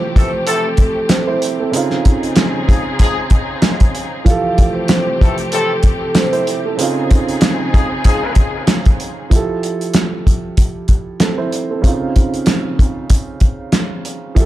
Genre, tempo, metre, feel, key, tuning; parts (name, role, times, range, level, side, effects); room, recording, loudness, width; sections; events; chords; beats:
hip hop, boom-bap hip-hop; 95 BPM; 4/4; swing 54% on 16ths; A4 = 440 Hz
vibraphone with soft mallets; melody; 0.0-6.4 s; A4 to F5; -21 LUFS; equal; high-pass filter, low-pass filter, ping-pong delay
dark upright piano; accompaniment; 0.0-14.5 s; Db3 to C5; -21 LUFS; right 4 dB; cassette tape, high-pass filter, low-pass filter
warm studio string section; sustained chords; 0.0-9.3 s; C3 to Ab4; -24 LUFS; left 2 dB; high-pass filter, low-pass filter
warm horn section; stabs; 0.2-8.3 s; E3 to A4; -22 LUFS; left 3 dB; high-pass filter, low-pass filter, ping-pong delay
cloth-damped thuddy drum kit; drums; 0.2-14.5 s; hi-hat, kick drum, snare drum; -13 LUFS; equal
light reverb, studio reverb; dark, warm production; -13 LUFS; side -14 dB against mid
0.0-9.3 A section; 9.3-14.5 B section
0.0 Fmaj9; 1.7 Dbmaj9; 4.3 Fmaj9; 6.8 Dbmaj9; 9.3 Fmaj9; 11.8 Dbmaj9
0.47 1.10 | 1.73 2.37 3.00 3.63 | 4.26 4.89 5.52 6.15 | 6.79 7.42 8.05 8.68 | 9.31 9.94 10.58 11.21 | 11.84 12.47 13.10 13.73 | 14.37